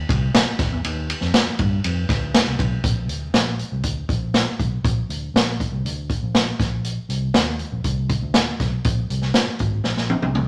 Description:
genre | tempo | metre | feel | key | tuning
uptempo 1960s-style soul | 120 BPM | 4/4 | straight | Bb mixolydian | A4 = 441 Hz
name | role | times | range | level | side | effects
vintage muted fingered electric bass | bass | 0.0-10.5 s | Ab1 to G2 | -27 LUFS | equal | none
swinging big-band drum kit | drums | 0.1-10.5 s | hi-hat, kick drum, ride cymbal, snare drum, toms | -22 LUFS | equal | none
room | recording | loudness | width
wet studio reverb, RT60 0.9 s | none | -21 LUFS | mono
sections
0.0-2.8 A section; 2.8-10.5 B section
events
drum fill 9.9-10.5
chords
none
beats
0.34 | 0.84 1.33 1.83 2.33 | 2.83 3.34 3.84 4.34 | 4.84 5.34 5.84 6.35 | 6.85 7.35 7.85 8.35 | 8.85 9.35 9.85 10.35

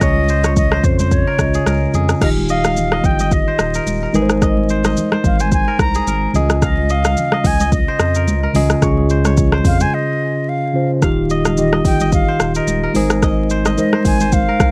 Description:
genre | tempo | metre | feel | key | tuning
afrobeats | 109 BPM | 4/4 | swing 55% on 16ths | unclear | A4 = 440 Hz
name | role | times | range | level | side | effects
concert flute | melody | 0.0-14.7 s | C5 to Bb5 | -24 LUFS | equal | none
mellow tine electric piano | accompaniment | 0.0-14.7 s | Db3 to Eb5 | -21 LUFS | equal | none
kora | riff | 0.0-14.7 s | Ab4 to F5 | -27 LUFS | equal | none
saturated sub bass | bass | 0.0-14.7 s | Eb1 to F2 | -22 LUFS | equal | none
afro-pop drum kit | drums | 0.0-14.7 s | crash cymbal, hi-hat, kick drum, rim click, shaker | -20 LUFS | equal | none
congas | percussion | 0.2-14.3 s | none | -27 LUFS | equal | none
room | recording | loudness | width
light reverb | vinyl crackle | -16 LUFS | mono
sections
0.0-2.2 A section; 2.2-11.0 B section; 11.0-14.7 C section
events
break 9.9-11.0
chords
0.0 Dbadd9; 2.2 Ebadd9; 4.1 Abadd9; 6.3 Dbadd9; 11.0 Ebadd9; 13.0 Abadd9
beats
| 0.01 0.57 1.12 1.67 | 2.22 2.77 3.32 3.87 | 4.42 4.97 5.52 6.07 | 6.62 7.17 7.72 8.27 | 8.82 9.37 9.92 10.47 | 11.02 11.57 12.12 12.68 | 13.23 13.78 14.33

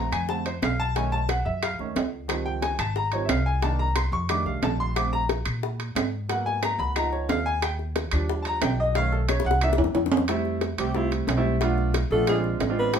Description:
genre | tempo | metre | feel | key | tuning
Afro-Cuban jazz | 180 BPM | 4/4 | straight | unclear | A4 = 438 Hz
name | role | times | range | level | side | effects
clear baby grand piano | accompaniment | 0.0-13.0 s | D3 to D6 | -27 LUFS | right 1 dB | none
upright bass | bass | 0.0-13.0 s | Ab1 to Bb2 | -27 LUFS | equal | none
bongos | percussion | 0.1-13.0 s | none | -32 LUFS | left 7 dB | none
claves | percussion | 0.1-9.8 s | none | -36 LUFS | left 4 dB | none
timbales | percussion | 0.1-13.0 s | none | -28 LUFS | right 4 dB | none
warm alto saxophone | melody | 10.8-13.0 s | F4 to C5 | -25 LUFS | left 1 dB | none
room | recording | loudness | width
wet studio reverb, RT60 0.5 s | heard from further back in the room | -23 LUFS | side -7 dB against mid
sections
0.0-10.3 A section; 10.3-13.0 A section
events
grand piano solo 0.0-10.3; drum fill 9.3-10.3; alto saxophone solo 10.3-13.0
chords
0.0 Bbmaj9; 1.0 B9; 2.3 Dbmaj9#11; 3.6 Cm9; 4.3 F13; 5.0 Bbmaj9; 6.3 Abm7; 7.0 Db9; 7.6 Ebmaj7; 9.0 B9; 9.6 C7; 10.3 Fmaj7; 11.6 Bm7b5; 12.3 Bb9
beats
0.29 0.62 | 0.96 1.29 1.62 1.96 | 2.29 2.63 2.96 3.29 | 3.63 3.96 4.29 4.63 | 4.96 5.29 5.63 5.96 | 6.29 6.62 6.96 7.29 | 7.62 7.96 8.29 8.62 | 8.96 9.29 9.62 9.95 | 10.28 10.62 10.95 11.28 | 11.61 11.95 12.28 12.61 | 12.94

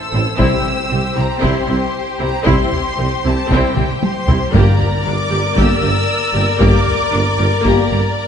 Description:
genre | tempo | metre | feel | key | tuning
cinematic, epic orchestral film score | 116 BPM | 4/4 | straight | C mixolydian | A4 = 440 Hz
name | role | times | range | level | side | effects
warm symphonic violin section | melody | 0.0-8.3 s | G5 to E6 | -22 LUFS | left 1 dB | none
rich symphonic violin section | second line | 0.0-8.3 s | G4 to D5 | -21 LUFS | left 3 dB | none
clear symphonic viola section | accompaniment | 0.1-8.0 s | Bb3 to G4 | -22 LUFS | equal | none
mellow tuba | bass | 0.1-8.0 s | G1 to C2 | -23 LUFS | right 2 dB | none
rich symphonic double bass section | bass | 0.1-8.0 s | G1 to C2 | -20 LUFS | right 2 dB | none
warm symphonic cello section | bass | 0.1-8.0 s | G2 to C3 | -22 LUFS | right 2 dB | none
dark French horn section | sustained chords | 0.4-7.8 s | G3 to C4 | -25 LUFS | left 6 dB | none
taiko ensemble | drums | 0.4-8.1 s | none | -20 LUFS | equal | none
timpani | percussion | 0.4-1.1, 4.5-5.3 s | G2 to C3 | -23 LUFS | left 1 dB | none
room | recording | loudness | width
wet scoring stage reverb, RT60 1.7 s | nothing above 10.7 kHz | -13 LUFS | side -8 dB against mid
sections
0.0-8.3 A section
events
drum fill 3.8-4.5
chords
0.4 C; 4.5 Gm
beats
| 0.40 0.92 1.43 1.95 | 2.47 2.99 3.51 4.03 | 4.54 5.06 5.58 6.09 | 6.61 7.13 7.65 8.17

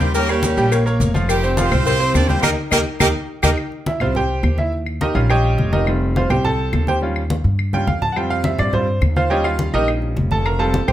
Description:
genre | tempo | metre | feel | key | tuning
latin, salsa | 210 BPM | 4/4 | straight | unclear | A4 = 439 Hz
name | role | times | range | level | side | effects
brilliant horn section | melody | 0.0-3.5 s | G3 to D5 | -20 LUFS | right 2 dB | none
bright grand piano | accompaniment | 0.0-10.9 s | F3 to Bb5 | -20 LUFS | right 1 dB | none
upright bass | bass | 0.0-10.9 s | F1 to G2 | -20 LUFS | equal | none
congas | percussion | 0.0-10.9 s | none | -24 LUFS | left 1 dB | none
cowbell | percussion | 0.0-3.5 s | none | -27 LUFS | left 6 dB | none
maracas | percussion | 0.0-3.5 s | none | -31 LUFS | right 6 dB | none
claves | percussion | 0.3-10.9 s | none | -28 LUFS | left 5 dB | none
room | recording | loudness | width
moderate large studio reverb, RT60 0.9 s | none | -16 LUFS | side -12 dB against mid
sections
0.0-3.6 A section; 3.6-10.9 B section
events
band accent 2.4-3.6; drum fill 3.0-3.6, 7.7-8.2; grand piano solo 3.6-10.9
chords
0.1 Eb7; 1.3 Fsus2; 2.4 Eb; 3.6 Fsus2; 4.7 Eb7; 5.9 Fsus2; 7.0 Eb7; 8.2 Fsus2; 9.3 Eb7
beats
| 0.14 0.43 0.72 1.00 | 1.29 1.58 1.86 2.15 | 2.44 2.72 3.01 3.29 | 3.58 3.87 4.15 4.44 | 4.72 5.01 5.30 5.58 | 5.87 6.16 6.44 6.73 | 7.02 7.30 7.59 7.88 | 8.16 8.45 8.74 9.02 | 9.31 9.60 9.88 10.17 | 10.46 10.74

